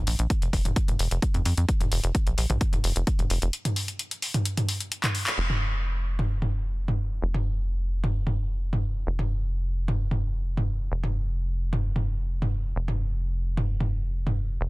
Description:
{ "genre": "driving peak-time techno", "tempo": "130 BPM", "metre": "4/4", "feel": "straight", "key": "unclear", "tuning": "A4 = 439 Hz", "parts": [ { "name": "tight sequencer bass", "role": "bass", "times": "0.0-14.7 s", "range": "F1 to F2", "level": "-27 LUFS", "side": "equal", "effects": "sidechain pumping" }, { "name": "punchy analog drum machine", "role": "drums", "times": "0.1-14.4 s", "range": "handclaps, hi-hat, toms", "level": "-28 LUFS", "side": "equal", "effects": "none" }, { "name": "electronic kick drum", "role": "drums", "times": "0.3-3.2 s", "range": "none", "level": "-25 LUFS", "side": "equal", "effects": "overdrive" } ], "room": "little or no reverb", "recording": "dense, heavily limited modern master", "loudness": "-24 LUFS", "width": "side -21 dB against mid", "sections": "0.0-5.4 A section; 5.4-14.7 B section", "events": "break 3.5-5.4; drum fill 5.0-5.4; band accent 5.3", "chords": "none" }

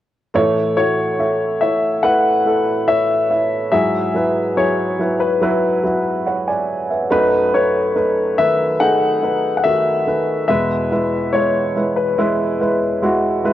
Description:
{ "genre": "pop", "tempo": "71 BPM", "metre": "4/4", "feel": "straight", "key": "A major", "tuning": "A4 = 440 Hz", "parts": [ { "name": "warm upright piano", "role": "accompaniment", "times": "0.3-13.5 s", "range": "E2 to G#5", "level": "-17 LUFS", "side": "right 1 dB", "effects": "cassette tape" }, { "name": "clear baby grand piano", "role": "melody", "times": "0.8-12.8 s", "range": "B4 to F#5", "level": "-19 LUFS", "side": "left 4 dB", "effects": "cassette tape" } ], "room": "moderate lush hall reverb, RT60 2.8 s", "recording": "home recording on cassette", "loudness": "-15 LUFS", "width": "side -12 dB against mid", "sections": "0.3-13.5 A section", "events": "none", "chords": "0.3 A; 3.7 Eadd9/G#; 7.1 B7/F#; 10.5 E" }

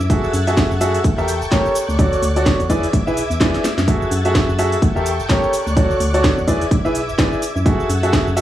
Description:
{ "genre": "piano house", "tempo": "127 BPM", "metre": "4/4", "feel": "swing 58% on 16ths", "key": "F# minor", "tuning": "A4 = 440 Hz", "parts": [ { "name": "analog string pad", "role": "sustained chords", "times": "0.0-8.4 s", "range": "D5 to A6", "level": "-28 LUFS", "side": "equal", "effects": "ensemble chorus, sidechain pumping" }, { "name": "organ-like FM bass", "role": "bass", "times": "0.0-8.4 s", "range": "E1 to F#2", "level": "-21 LUFS", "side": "equal", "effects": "tube saturation, sidechain pumping" }, { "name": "house drum kit", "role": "drums", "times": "0.0-8.4 s", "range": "hi-hat, shaker, snare drum", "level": "-23 LUFS", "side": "right 1 dB", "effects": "none" }, { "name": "warm concert grand piano", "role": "riff", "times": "0.1-8.4 s", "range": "E4 to E5", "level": "-19 LUFS", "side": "equal", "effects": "sidechain pumping, digital delay" }, { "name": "electronic kick drum", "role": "drums", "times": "0.1-8.2 s", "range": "none", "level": "-18 LUFS", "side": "equal", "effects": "none" } ], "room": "light reverb", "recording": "small room ambience", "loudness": "-15 LUFS", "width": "side -12 dB against mid", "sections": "0.0-8.4 A section", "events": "drum fill 3.5-3.9", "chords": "0.1 F#m9; 1.0 A7b9/E; 1.8 Dmaj7; 2.7 E7; 3.9 F#m9; 4.8 A7b9/E; 5.5 Dmaj7; 6.5 E7; 7.7 F#m9" }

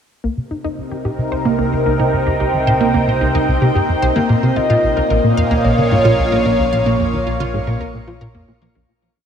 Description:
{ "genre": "ambient, sequencer-driven space music", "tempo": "111 BPM", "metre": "4/4", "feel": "straight", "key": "C phrygian", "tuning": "A4 = 440 Hz", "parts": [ { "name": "phased analog pad", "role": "sustained chords", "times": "0.8-8.9 s", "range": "Bb2 to G5", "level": "-18 LUFS", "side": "equal", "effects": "phaser, chorus" }, { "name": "wide unison pluck", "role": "arpeggios", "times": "0.2-8.8 s", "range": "Bb3 to F5", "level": "-22 LUFS", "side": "moving between left 4 dB and right 9 dB", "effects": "auto-pan, tape echo" }, { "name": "plucky analog bass", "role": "riff", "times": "0.2-8.8 s", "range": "Bb1 to F3", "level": "-18 LUFS", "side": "equal", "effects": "wide subtle chorus, tape echo" }, { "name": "analog drone", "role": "bass", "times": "1.3-8.9 s", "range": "Bb1 to C2", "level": "-28 LUFS", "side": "equal", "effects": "chorus" }, { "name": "soft octave-layered synth lead", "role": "melody", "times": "4.6-8.3 s", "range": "Db5 to Eb5", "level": "-19 LUFS", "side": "left 2 dB", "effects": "chorus, tape echo" } ], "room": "wet shimmer reverb, RT60 7.4 s", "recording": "none", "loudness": "-14 LUFS", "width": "side -8 dB against mid", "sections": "0.2-8.9 A section", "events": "fade-in on synth drone 0.2-8.9; filter sweep on analog synth bass 0.2-8.9; fade-out 6.0-8.9", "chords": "0.2 Cm7; 4.6 Bbm" }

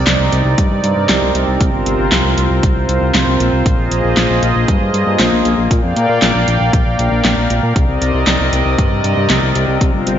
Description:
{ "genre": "synthwave", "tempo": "117 BPM", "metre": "4/4", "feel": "straight", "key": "C minor", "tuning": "A4 = 440 Hz", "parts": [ { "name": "warm analog pad", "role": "sustained chords", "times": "0.0-10.2 s", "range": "C3 to G5", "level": "-16 LUFS", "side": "equal", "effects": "chorus, sidechain pumping" }, { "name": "fat analog bass", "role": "bass", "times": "0.0-10.2 s", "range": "G1 to Bb2", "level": "-16 LUFS", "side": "equal", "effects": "sidechain pumping" }, { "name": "pop drum kit", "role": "drums", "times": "0.1-10.2 s", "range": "handclaps, hi-hat, snare drum", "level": "-18 LUFS", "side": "equal", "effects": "overdrive, gated reverb" }, { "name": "electronic kick drum", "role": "drums", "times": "0.6-9.9 s", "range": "none", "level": "-15 LUFS", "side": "equal", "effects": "overdrive" } ], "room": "light reverb", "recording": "nothing above 7.5 kHz", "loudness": "-12 LUFS", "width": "side -10 dB against mid", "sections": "0.0-10.2 A section", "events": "none", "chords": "0.0 Cm7; 1.6 Fsus4; 3.7 Bb7sus4; 5.7 Gm7/Bb; 7.8 Cm7" }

